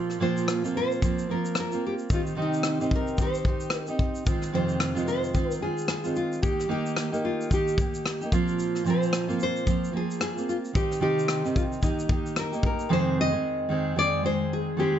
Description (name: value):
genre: acoustic pop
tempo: 111 BPM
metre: 4/4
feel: swing 60% on 16ths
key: unclear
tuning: A4 = 439 Hz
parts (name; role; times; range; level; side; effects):
- fingerpicked steel-string acoustic guitar; accompaniment; 0.0-15.0 s; F2 to Ab4; -27 LUFS; right 2 dB; none
- natural country drum kit; drums; 0.1-12.9 s; kick drum, rim click, shaker; -28 LUFS; left 1 dB; none
- nylon-string guitar; melody; 0.2-15.0 s; Eb4 to Eb5; -29 LUFS; left 2 dB; none
- ethereal airy pad; sustained chords; 13.6-15.0 s; F2 to Ab3; -33 LUFS; left 3 dB; ensemble chorus, built-in reverb
room: light reverb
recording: nothing above 7.9 kHz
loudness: -24 LUFS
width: side -10 dB against mid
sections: 0.0-12.9 A section; 12.9-15.0 B section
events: none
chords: 0.0 Bbsus2; 2.1 Cm; 4.3 Fm7; 6.4 Eb; 8.3 Bbsus2; 10.7 Cm; 11.8 Eb; 12.9 Fm7